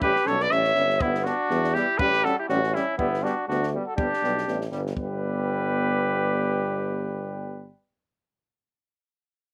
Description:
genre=balkan folk, Balkan brass band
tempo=121 BPM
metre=2/4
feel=swing 56% on 16ths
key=G major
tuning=A4 = 441 Hz
part: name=mellow trumpet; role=melody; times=0.0-7.7 s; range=E4 to E5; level=-28 LUFS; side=equal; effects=none
part: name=mellow flugelhorn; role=second line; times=0.0-7.7 s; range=B3 to C#5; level=-31 LUFS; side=equal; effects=slapback echo
part: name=bright trombone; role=accompaniment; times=0.0-7.7 s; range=G3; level=-36 LUFS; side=equal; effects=slapback echo
part: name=dark French horn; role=accompaniment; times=0.0-7.7 s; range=B3 to C#4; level=-36 LUFS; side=equal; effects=none
part: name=warm tuba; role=bass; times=0.0-7.7 s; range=G1 to E2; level=-32 LUFS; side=equal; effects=none
part: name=compact cocktail drum kit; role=percussion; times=0.0-5.2 s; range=kick drum, snare drum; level=-37 LUFS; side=equal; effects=none
room=little or no reverb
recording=recorded outdoors, with no room sound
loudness=-25 LUFS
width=mono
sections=0.0-5.0 A section; 5.0-6.9 B section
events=none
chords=0.0 A7; 1.0 G; 2.0 A7; 3.0 G

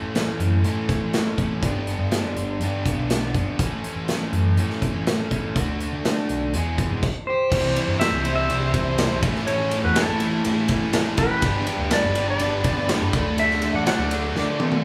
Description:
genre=classic rock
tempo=122 BPM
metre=4/4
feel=straight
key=unclear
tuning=A4 = 440 Hz
part: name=overdriven electric guitar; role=riff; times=0.0-14.8 s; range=E2 to A4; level=-32 LUFS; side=equal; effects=none
part: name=overdriven semi-hollow guitar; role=riff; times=0.0-14.8 s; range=G2 to F#4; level=-31 LUFS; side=equal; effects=none
part: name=overdriven picked electric bass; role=bass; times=0.0-14.6 s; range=G1 to D3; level=-28 LUFS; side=equal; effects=none
part: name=big rock drum kit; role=drums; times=0.2-14.8 s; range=crash cymbal, hi-hat, kick drum, ride cymbal, snare drum, toms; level=-28 LUFS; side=equal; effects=none
part: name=clean lap steel guitar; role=melody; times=7.3-14.6 s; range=A4 to F#5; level=-27 LUFS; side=equal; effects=none
part: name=octave-fuzz lead guitar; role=second line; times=7.3-14.6 s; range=E4 to D5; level=-35 LUFS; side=equal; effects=distortion
part: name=distorted electric guitar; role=riff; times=7.5-14.8 s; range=G2 to D4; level=-34 LUFS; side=equal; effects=none
room=light reverb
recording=band playing live in one room, studio ambience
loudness=-22 LUFS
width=mono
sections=0.0-7.5 A section; 7.5-14.8 B section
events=drum fill 14.4-14.8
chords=0.0 A; 1.6 G; 3.6 A; 5.6 D; 6.5 E; 7.5 C; 9.2 A; 11.4 G; 13.1 D

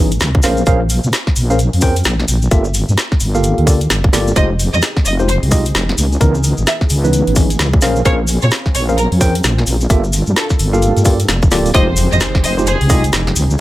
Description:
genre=UK garage, two-step garage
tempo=130 BPM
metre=4/4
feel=swing 62% on 16ths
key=F minor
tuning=A4 = 440 Hz
part: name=tine electric piano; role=stabs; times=0.0-13.0 s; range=Fb3 to G5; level=-18 LUFS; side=equal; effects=medium stereo tremolo, dub echo
part: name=deep soft wobble bass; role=bass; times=0.0-13.6 s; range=D1 to Bb2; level=-15 LUFS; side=equal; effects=chorus
part: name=garage drum kit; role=drums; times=0.1-13.5 s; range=hi-hat, snare drum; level=-20 LUFS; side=equal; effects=none
part: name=cabasa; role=percussion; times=0.1-13.6 s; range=none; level=-24 LUFS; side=left 2 dB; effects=none
part: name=electronic kick drum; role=drums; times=0.3-13.0 s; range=none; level=-13 LUFS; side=equal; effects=none
part: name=warm studio violin section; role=melody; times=4.4-12.9 s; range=Ab4 to Fb5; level=-20 LUFS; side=equal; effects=dub echo
part: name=warm analog pad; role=sustained chords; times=4.4-13.6 s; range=Fb3 to A4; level=-28 LUFS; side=left 1 dB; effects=chorus, sidechain pumping
part: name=impact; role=sound effects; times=11.9-13.6 s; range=none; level=-24 LUFS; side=equal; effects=none
room=digital ambience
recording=none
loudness=-11 LUFS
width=side -16 dB against mid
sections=0.0-11.7 A section; 11.7-13.6 B section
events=drop 11.7-13.6; impact 11.7-13.6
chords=0.4 Bbm9; 2.5 Gm9; 4.4 Fm9; 6.0 Dbm9; 7.8 Bbm9; 9.9 Gm9; 11.7 Fm9

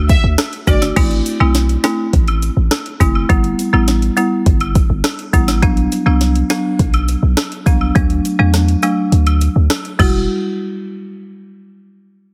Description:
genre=dancehall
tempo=103 BPM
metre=4/4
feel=straight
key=E minor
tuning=A4 = 442 Hz
part: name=warm 808-style bass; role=bass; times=0.0-10.3 s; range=E1 to E2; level=-17 LUFS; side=equal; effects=none
part: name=clear studio violin section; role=melody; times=0.1-0.8 s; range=D5 to E5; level=-26 LUFS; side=equal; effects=digital delay
part: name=afro-pop drum kit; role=drums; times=0.1-10.1 s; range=crash cymbal, hi-hat, kick drum, rim click, snare drum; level=-18 LUFS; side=equal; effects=none
part: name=cabasa and woodblock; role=percussion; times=0.1-10.3 s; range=none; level=-28 LUFS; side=equal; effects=none
part: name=folk marimba with hard mallets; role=accompaniment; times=0.7-10.2 s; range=F#3 to F#4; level=-20 LUFS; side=equal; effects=sidechain pumping
room=light reverb, studio reverb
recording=heavily compressed radio sound, multiband compression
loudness=-15 LUFS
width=mono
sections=1.0-10.3 A section; 10.3-12.3 B section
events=kick muted 9.1-10.3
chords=0.0 D; 1.0 Am; 3.3 Em/G; 5.6 Bm; 8.0 D; 10.0 Emadd9; 10.3 N.C.

